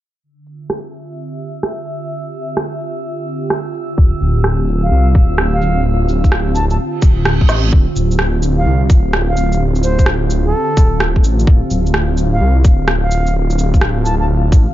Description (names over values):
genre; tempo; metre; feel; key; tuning
future garage; 128 BPM; 4/4; swing 66% on 16ths; D minor; A4 = 440 Hz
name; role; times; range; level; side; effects
airy breathy pad; sustained chords; 0.2-14.7 s; D3 to F5; -22 LUFS; right 2 dB; chorus, sidechain pumping
drifting glass-harmonics texture; texture; 1.6-7.7 s; E6; -35 LUFS; right 2 dB; chorus, built-in reverb
electronic shaker, rim click and snare drum; drums; 0.5-14.6 s; none; -20 LUFS; right 1 dB; none
swelling detuned saw bass; bass; 4.0-14.7 s; D1 to C2; -15 LUFS; equal; sidechain pumping
electronic kick drum; drums; 4.0-14.6 s; none; -10 LUFS; equal; none
wooden flute; melody; 4.8-14.3 s; A4 to A5; -22 LUFS; right 1 dB; analog delay
reverse cymbal; sound effects; 7.0-7.7 s; none; -28 LUFS; right 9 dB; none
room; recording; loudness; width
little or no reverb; dark, warm production, low-pass filter, nothing above 7.5 kHz; -12 LUFS; side -14 dB against mid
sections
0.2-7.7 A section; 7.7-14.7 B section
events
filter sweep on analog synth pad 0.2-7.7; filter sweep 0.2-7.7; reverse cymbal 7.0-7.7; drum fill 7.5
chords
0.2 Dm11; 7.7 Dm7